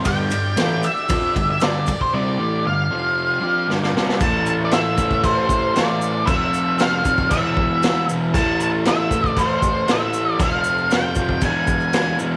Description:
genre	garage rock duo or trio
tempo	116 BPM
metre	4/4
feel	straight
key	A minor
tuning	A4 = 442 Hz
part	overdriven combo organ	sustained chords	0.0-12.4 s	C4 to D5	-35 LUFS	equal	none
part	fuzz guitar	riff	0.0-12.4 s	E2 to F4	-24 LUFS	equal	distortion
part	tube shaker	percussion	0.0-12.3 s	none	-42 LUFS	equal	none
part	octave-fuzz lead guitar	melody	0.1-12.2 s	C5 to A5	-24 LUFS	equal	distortion, tape echo
part	raw garage drum kit	drums	0.1-12.1 s	crash cymbal, kick drum, ride cymbal, snare drum	-24 LUFS	equal	none
room	light reverb, small room ambience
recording	none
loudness	-19 LUFS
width	mono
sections	0.0-4.2 A section; 4.2-12.4 B section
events	drum fill 3.7-4.2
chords	0.1 G5; 2.9 F5; 3.4 G5; 4.2 Am; 6.3 F; 7.3 E; 8.3 Am; 10.4 F; 11.4 E

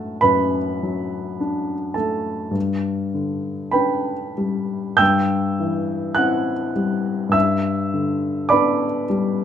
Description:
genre	classical, romantic nocturne for solo piano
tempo	51 BPM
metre	4/4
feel	rubato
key	G major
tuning	A4 = 440 Hz
part	warm grand piano	solo	0.0-9.4 s	F#2 to G6	-19 LUFS	equal	none
room	light reverb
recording	none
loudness	-19 LUFS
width	side -9 dB against mid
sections	0.0-9.4 A section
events	none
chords	0.0 D/F#; 2.6 G; 5.0 C/G; 7.3 G

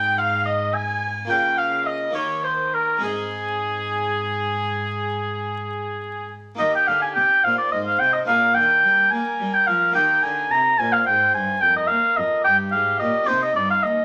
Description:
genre	classical, baroque-style sonata movement with continuo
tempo	66-73 BPM (dotted quarters)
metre	12/8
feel	rubato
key	Ab major, Eb major from 6.6 s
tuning	A4 = 439 Hz
part	rich violin	melody	0.0-14.0 s	Eb4 to Ab5	-33 LUFS	equal	none
part	warm oboe	second line	0.0-14.0 s	Ab4 to Bb5	-21 LUFS	equal	none
part	harpsichord	accompaniment	0.0-14.0 s	Eb2 to Bb4	-36 LUFS	equal	none
part	dark cello	bass	0.0-14.0 s	Eb2 to Bb3	-34 LUFS	equal	none
room	moderate stone room reverb, RT60 0.9 s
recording	vinyl crackle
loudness	-20 LUFS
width	mono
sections	0.0-6.6 A section; 6.6-14.0 A section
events	none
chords	0.0 Ab; 1.3 Bbm/Db; 2.2 Eb; 3.0 Ab; 6.6 Eb; 8.3 Bb7; 9.9 Eb; 13.3 Cm

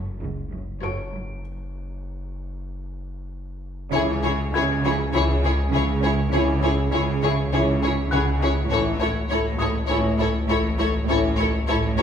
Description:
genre	cinematic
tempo	101 BPM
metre	4/4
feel	straight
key	C# minor from 3.9 s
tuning	A4 = 440 Hz
part	clear symphonic violin section	melody	0.0-12.0 s	C#5	-29 LUFS	left 3 dB	none
part	rich symphonic violin section	second line	0.0-12.0 s	G#4 to A4	-29 LUFS	left 3 dB	none
part	dark symphonic viola section	accompaniment	0.0-12.0 s	E4 to F#4	-28 LUFS	equal	none
part	rich symphonic cello section	riff	0.0-12.0 s	F#2 to C#4	-30 LUFS	right 1 dB	none
part	saturated sub bass	drone	0.0-12.0 s	F#1 to C#2	-28 LUFS	left 2 dB	none
part	clear symphonic cello section	bass	0.2-12.0 s	C#2 to C#3	-28 LUFS	right 2 dB	none
part	clear symphonic double bass section	bass	0.2-12.0 s	A1 to C#2	-28 LUFS	right 2 dB	none
part	felt-muted upright piano	texture	0.8-12.0 s	C#5 to D7	-35 LUFS	left 4 dB	none
part	mellow French horn section	sustained chords	3.9-11.3 s	E3 to C#4	-28 LUFS	left 2 dB	none
room	wet recital hall reverb, RT60 1.4 s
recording	recorded in a church or concert hall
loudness	-20 LUFS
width	side -8 dB against mid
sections	0.0-3.9 A section; 3.9-12.0 B section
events	break 1.4-3.9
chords	0.0 F#5; 3.9 C#m; 8.7 A

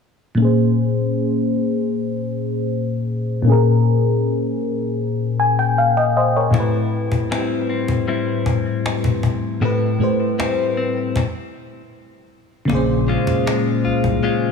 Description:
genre	contemporary R&B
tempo	78 BPM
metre	4/4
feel	straight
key	Bb dorian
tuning	A4 = 438 Hz
part	mellow FM electric piano	accompaniment	0.3-14.5 s	A2 to Ab5	-18 LUFS	left 2 dB	chorus, phaser, low-pass filter
part	direct-recorded clean electric guitar	arpeggios	6.5-14.5 s	A2 to F4	-22 LUFS	left 7 dB	spring reverb, low-pass filter, digital delay
part	cajon	drums	6.5-14.2 s	none	-24 LUFS	equal	none
part	round analog bass	bass	12.7-14.2 s	Bb1 to C2	-24 LUFS	left 1 dB	none
room	light reverb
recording	studio ambience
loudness	-17 LUFS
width	side -6 dB against mid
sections	0.4-12.7 A section; 12.7-14.5 B section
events	filter sweep 0.4-12.7; FM electric piano fill 5.0-6.5; stop 11.2-12.7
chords	0.4 Bbm7; 6.5 Am7; 12.7 Bbm7

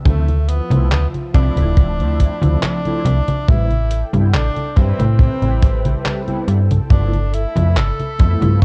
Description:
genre	vaporwave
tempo	70 BPM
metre	4/4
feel	straight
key	A minor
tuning	A4 = 440 Hz
part	mellow synth brass	accompaniment	0.0-8.6 s	F3 to B4	-28 LUFS	equal	ensemble chorus, analog delay
part	lush unison pad	sustained chords	0.0-8.6 s	F3 to B5	-36 LUFS	equal	none
part	breathy tenor saxophone	melody	0.1-8.6 s	A3 to A4	-28 LUFS	equal	tape echo
part	slap-like FM bass	bass	0.1-8.6 s	D1 to A2	-18 LUFS	equal	none
part	detuned 8-bit digital drum machine	drums	0.1-8.6 s	congas, handclaps, hi-hat	-24 LUFS	equal	studio reverb
part	kick drum	drums	0.1-8.6 s	none	-15 LUFS	equal	studio reverb
room	small room ambience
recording	dark, warm production, cassette tape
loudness	-16 LUFS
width	mono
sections	0.0-8.6 A section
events	none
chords	0.1 Dm9; 3.5 Am7; 6.9 G13

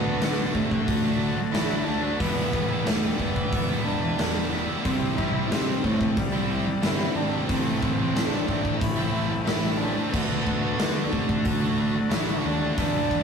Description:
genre	quiet-loud alternative rock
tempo	91 BPM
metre	4/4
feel	straight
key	unclear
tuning	A4 = 440 Hz
part	rich cello	melody	0.0-13.2 s	G3 to E4	-28 LUFS	right 1 dB	none
part	cranked stack guitar	riff	0.0-13.2 s	E2 to D4	-35 LUFS	equal	none
part	scooped high-gain guitar	riff	0.0-13.2 s	A2 to F#4	-30 LUFS	right 3 dB	distortion
part	tight distorted guitar	riff	0.0-13.2 s	A2 to F#4	-32 LUFS	left 4 dB	distortion
part	fuzz picked electric bass	bass	0.0-13.2 s	E1 to D3	-31 LUFS	equal	overdrive
part	big rock drum kit	drums	0.2-13.2 s	crash cymbal, hi-hat, kick drum, snare drum	-27 LUFS	left 1 dB	none
room	light reverb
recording	rough rehearsal-room recording, warm saturation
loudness	-22 LUFS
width	side -6 dB against mid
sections	0.0-13.2 A section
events	none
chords	0.0 D; 2.2 Em7; 4.8 C; 7.5 Am; 10.1 D

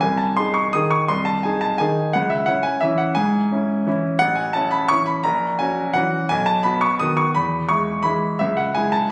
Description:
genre	classical, piano waltz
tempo	172 BPM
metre	3/4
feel	uneven beats, rubato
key	C# minor, E major from 4.2 s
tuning	A4 = 440 Hz
part	clear baby grand piano	solo	0.0-9.1 s	A1 to D#6	-20 LUFS	equal	none
room	wet recital hall reverb, RT60 1.5 s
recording	recorded on a phone in the room, club reverb, compression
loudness	-20 LUFS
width	mono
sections	0.0-9.1 A section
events	none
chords	0.0 G#/B#; 2.1 C#m; 4.2 A; 5.3 F#7/A#; 6.3 B; 7.4 E; 8.4 C#m

